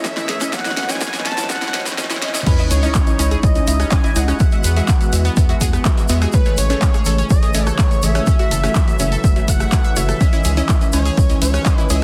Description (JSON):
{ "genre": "progressive house", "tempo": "124 BPM", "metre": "4/4", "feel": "straight", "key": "C# minor", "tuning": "A4 = 439 Hz", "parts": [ { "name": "expressive synth lead", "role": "melody", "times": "0.0-12.0 s", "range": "B4 to A5", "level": "-29 LUFS", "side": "equal", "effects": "lush chorus, sidechain pumping, delay" }, { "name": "soft supersaw", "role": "second line", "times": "0.0-12.0 s", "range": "B4 to A5", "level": "-33 LUFS", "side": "equal", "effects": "none" }, { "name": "warm analog pad", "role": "sustained chords", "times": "0.0-12.0 s", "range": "C#3 to C#5", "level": "-30 LUFS", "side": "equal", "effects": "chorus, sidechain pumping" }, { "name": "analog pluck", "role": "arpeggios", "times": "0.0-11.9 s", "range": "B3 to E6", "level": "-30 LUFS", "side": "equal", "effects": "chorus, sidechain pumping, delay" }, { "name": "unison pluck", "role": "stabs", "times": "0.0-12.0 s", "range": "G#3 to F#5", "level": "-28 LUFS", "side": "equal", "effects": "sidechain pumping" }, { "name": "electronic kick drum", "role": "drums", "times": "0.0-11.8 s", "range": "none", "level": "-18 LUFS", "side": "equal", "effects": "overdrive, high-pass filter on kick" }, { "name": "pop drum kit", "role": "drums", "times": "0.0-12.0 s", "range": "crash cymbal, handclaps, hi-hat, ride cymbal, rim click, snare drum", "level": "-27 LUFS", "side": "equal", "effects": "sidechain pumping on hats, sidechain pumping on cymbals" }, { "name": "tube shaker", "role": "percussion", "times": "0.0-12.0 s", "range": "none", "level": "-32 LUFS", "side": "equal", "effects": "none" }, { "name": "riser and sub drop", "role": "sound effects", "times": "0.1-4.4 s", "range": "none", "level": "-30 LUFS", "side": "equal", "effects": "none" }, { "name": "round analog bass", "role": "bass", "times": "2.7-12.0 s", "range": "F#1 to E2", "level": "-21 LUFS", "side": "equal", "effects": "sidechain pumping" } ], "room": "digital ambience", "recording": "dense, heavily limited modern master, high-pass filter", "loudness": "-17 LUFS", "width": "mono", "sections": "0.0-2.5 A section; 2.5-12.0 B section", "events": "build-up 0.0-2.5; drum fill 0.0-2.5; filter sweep on synth pluck 0.0-2.5; drop 2.5-12.0; impact 2.5-4.4", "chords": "0.0 Amaj7; 0.5 F#m7; 2.5 C#madd9; 4.4 Eadd9; 6.3 Amaj7; 8.3 F#m7; 10.2 C#madd9" }